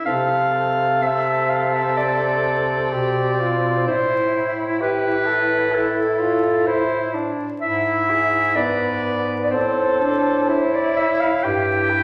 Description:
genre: classical, lyrical piece for single-reed quartet.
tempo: 63 BPM.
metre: 4/4.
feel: rubato.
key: A minor.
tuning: A4 = 439 Hz.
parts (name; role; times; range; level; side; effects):
bright clarinet; second line; 0.0-12.0 s; A4 to G5; -22 LUFS; equal; none.
mellow tenor saxophone; accompaniment; 0.0-12.0 s; B3 to E4; -28 LUFS; equal; none.
mellow soprano saxophone; melody; 0.1-12.0 s; D4 to B4; -27 LUFS; equal; none.
clear bass clarinet; bass; 0.1-12.0 s; G2 to C3; -28 LUFS; equal; none.
room: wet recital hall reverb, RT60 1.6 s.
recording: vinyl crackle.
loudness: -20 LUFS.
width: mono.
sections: 0.0-12.0 A section.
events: none.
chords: 0.1 Am/C; 3.9 A5; 7.6 E/G#; 9.5 Am; 11.4 Em/G.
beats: | 0.06 1.01 1.98 2.93 | 3.88 4.81 5.74 6.68 | 7.62 8.56 9.52 10.49 | 11.44.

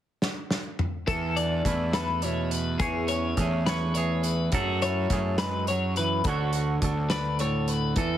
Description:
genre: math rock and midwest emo.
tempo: 70 BPM (dotted quarters).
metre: 6/8.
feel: straight.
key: unclear.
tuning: A4 = 441 Hz.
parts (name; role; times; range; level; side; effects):
loose indie drum kit; drums; 0.2-8.1 s; hi-hat, kick drum, snare drum, toms; -30 LUFS; equal; none.
twangy electric guitar; accompaniment; 1.1-8.2 s; A2 to D5; -30 LUFS; right 5 dB; none.
twelve-string electric guitar; arpeggios; 1.1-8.2 s; G#4 to D5; -30 LUFS; left 5 dB; lush chorus.
fuzz picked electric bass; bass; 1.1-8.2 s; D2 to F#2; -28 LUFS; equal; overdrive.
room: light reverb.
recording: heavily compressed radio sound.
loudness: -24 LUFS.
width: side -11 dB against mid.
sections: 0.0-1.1 A section; 1.1-8.2 B section.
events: drum fill 0.2-1.1.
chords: 0.0 N.C.; 1.1 E7sus4; 2.8 Amaj7/E; 4.5 F#m9; 6.2 Dmaj7.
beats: 0.22 | 1.08 1.94 | 2.80 3.66 | 4.52 5.38 | 6.25 7.11 | 7.97.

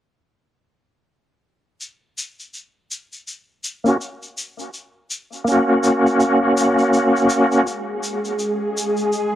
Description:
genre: trip hop.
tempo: 82 BPM.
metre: 4/4.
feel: swing 60% on 16ths.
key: unclear.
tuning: A4 = 440 Hz.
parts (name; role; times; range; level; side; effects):
tube shaker; percussion; 1.8-9.3 s; none; -29 LUFS; left 2 dB; none.
bright tonewheel organ; accompaniment; 3.8-7.7 s; Bb3 to Gb4; -16 LUFS; equal; overdrive, chorus vibrato, fast rotary speaker, tremolo, vintage 12-bit sampler grit, low-pass filter, cassette tape, tape echo.
string machine, cellos; sustained chords; 7.7-9.4 s; Ab4; -22 LUFS; equal; ensemble chorus, cassette tape.
room: moderate spring reverb, RT60 1.4 s, small room ambience.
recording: home recording on cassette.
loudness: -16 LUFS.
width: side -12 dB against mid.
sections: 1.8-9.4 A section.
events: none.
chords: 1.8 Bbm; 7.7 N.C..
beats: | 1.81 2.54 3.28 4.01 | 4.74 5.47 6.20 6.93 | 7.67 8.40 9.13.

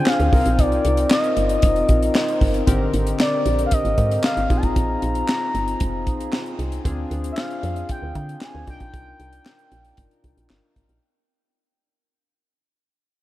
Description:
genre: early-eighties boogie funk.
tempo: 115 BPM.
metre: 4/4.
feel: straight.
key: C minor.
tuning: A4 = 439 Hz.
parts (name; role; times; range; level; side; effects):
expressive synth lead; melody; 0.0-10.5 s; D5 to Bb5; -24 LUFS; equal; chorus, diffuse ambient delay.
chorused polysynth; accompaniment; 0.0-11.0 s; D3 to Bb4; -25 LUFS; left 2 dB; none.
tight funk drum kit; drums; 0.1-11.0 s; handclaps, hi-hat, kick drum, snare drum; -22 LUFS; equal; none.
woody FM bass; bass; 0.2-11.0 s; F1 to D3; -23 LUFS; equal; none.
room: moderate huge ambient reverb, RT60 3.7 s.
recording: dreamy mix soaked in reverb.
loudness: -18 LUFS.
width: side -15 dB against mid.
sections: 0.0-2.7 A section; 2.7-11.0 B section.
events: fade-out 2.7-11.0.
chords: 0.3 Cm11; 2.7 Abmaj9#11; 4.5 Bb7sus4; 6.8 Dm7b5; 8.7 Cm11.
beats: 0.07 | 0.59 1.11 1.63 2.15 | 2.67 3.20 3.72 4.24 | 4.76 5.28 5.80 6.33 | 6.85 7.37 7.89 8.41 | 8.94 9.46 9.98 10.50.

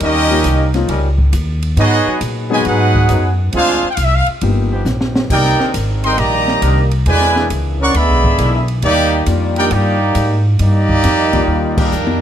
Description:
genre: jazz, big band swing.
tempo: 136 BPM.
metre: 4/4.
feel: swing 67% on 8ths.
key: Eb major.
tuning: A4 = 440 Hz.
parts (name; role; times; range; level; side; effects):
bright trumpet section; melody; 0.0-12.2 s; G3 to Db6; -16 LUFS; equal; none.
warm trombone section; second line; 0.0-12.2 s; Cb3 to G4; -20 LUFS; right 4 dB; none.
clear trombone section; sustained chords; 0.0-11.9 s; Eb3 to D5; -26 LUFS; left 2 dB; none.
upright bass; bass; 0.0-12.2 s; G1 to Bb2; -16 LUFS; equal; none.
open jazz drum kit; drums; 0.0-12.2 s; crash cymbal, hi-hat, kick drum, ride cymbal, snare drum, toms; -23 LUFS; equal; none.
warm concert grand piano; accompaniment; 0.3-4.7, 9.3-11.9 s; Eb3 to Ab4; -20 LUFS; left 7 dB; none.
room: light reverb.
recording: close, detailed microphones.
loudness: -12 LUFS.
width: side -10 dB against mid.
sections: 0.0-12.2 A section.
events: drum fill 4.9-5.3, 11.5-12.2; band accent 11.7.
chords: 0.0 Eb7; 1.8 Abm7; 3.5 Dm7b5; 4.4 G7alt; 5.3 Cm9; 7.1 E7#11; 8.8 Ebmaj7.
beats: | 0.01 0.45 0.89 1.33 | 1.77 2.21 2.65 3.10 | 3.54 3.98 4.42 4.86 | 5.30 5.74 6.18 6.62 | 7.06 7.50 7.95 8.39 | 8.83 9.27 9.71 10.15 | 10.59 11.04 11.48 11.92.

